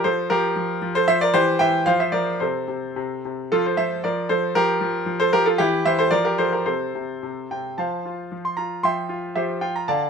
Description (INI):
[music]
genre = classical-period piano sonatina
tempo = 106-118 BPM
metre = 2/4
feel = rubato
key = F major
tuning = A4 = 440 Hz
[part]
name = bright concert grand piano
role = solo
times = 0.0-10.1 s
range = C3 to C6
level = -20 LUFS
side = equal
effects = none
[sound]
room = light reverb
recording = minimal, uncompressed stereo recording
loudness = -19 LUFS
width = side -6 dB against mid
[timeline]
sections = 0.0-7.8 A section; 7.8-10.1 B section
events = none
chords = 0.0 F; 1.3 C/E; 1.9 F5; 2.4 Am/C; 3.5 F; 4.6 Gm7/F; 5.6 C/E; 6.1 F; 6.7 Am/C; 7.8 F; 8.8 C/F